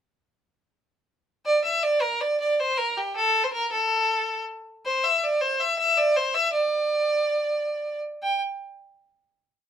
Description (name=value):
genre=celtic folk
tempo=106 BPM (dotted quarters)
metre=9/8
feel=straight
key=unclear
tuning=A4 = 444 Hz
part: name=rich fiddle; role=solo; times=1.5-8.4 s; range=G4 to G5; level=-22 LUFS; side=equal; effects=none
room=light reverb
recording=band playing live in one room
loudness=-22 LUFS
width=side -9 dB against mid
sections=1.5-8.2 A section; 8.2-9.7 final note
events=none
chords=none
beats=| 1.46 2.02 2.59 | 3.15 3.71 4.28 | 4.84 5.40 5.96 | 6.53 7.09 7.66 | 8.22